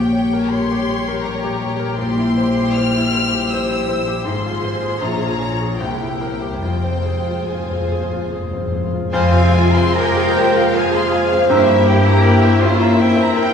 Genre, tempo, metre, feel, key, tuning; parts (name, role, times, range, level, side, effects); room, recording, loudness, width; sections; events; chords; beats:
classical, romantic movement for piano and orchestra; 68-84 BPM; 3/4; rubato; F minor; A4 = 440 Hz
clear baby grand piano; melody; 0.0-13.5 s; Bb1 to Bb5; -20 LUFS; left 2 dB
warm studio violin section; melody; 0.0-13.5 s; Bb4 to F6; -26 LUFS; left 2 dB
rich studio violin section; second line; 0.0-13.5 s; F4 to C6; -26 LUFS; left 1 dB
warm studio viola section; accompaniment; 0.0-13.5 s; F3 to G4; -25 LUFS; equal
warm studio cello section; bass; 0.0-13.5 s; Eb2 to Bb4; -24 LUFS; equal
warm studio double bass section; bass; 0.0-12.1 s; F1 to G2; -21 LUFS; equal
timpani; percussion; 6.6-9.1 s; F2; -29 LUFS; left 3 dB
clear clarinet; second line; 9.1-11.8 s; C5; -27 LUFS; left 1 dB
mellow hollow concert flute; second line; 9.1-11.8 s; Ab5 to Bb5; -32 LUFS; left 1 dB
warm oboe; second line; 9.1-11.8 s; E5 to F5; -30 LUFS; left 3 dB
mellow bassoon; accompaniment; 9.1-11.8 s; C4; -25 LUFS; right 4 dB
dark French horn section; sustained chords; 9.1-13.5 s; C4 to C5; -24 LUFS; left 2 dB
warm trombone section; sustained chords; 9.1-13.5 s; E3 to Bb3; -23 LUFS; right 1 dB
warm trumpet section; stabs; 9.1-13.5 s; C4 to G4; -24 LUFS; equal
wet concert hall reverb, RT60 2.3 s; recorded in a church or concert hall, small room ambience; -14 LUFS; side -7 dB against mid
0.0-9.1 A section; 9.1-13.5 A section
timpani fill 6.6-9.1
0.0 Gdim/Bb; 2.0 C7/Bb; 4.3 Fm/Ab; 5.0 Bbm7; 5.8 C7; 6.6 Fm; 11.5 C7/G
0.51 1.24 | 1.97 2.76 3.52 | 4.27 5.02 5.80 | 6.61 7.48 8.32 | 9.13 9.97 10.75 | 11.50 12.24 12.99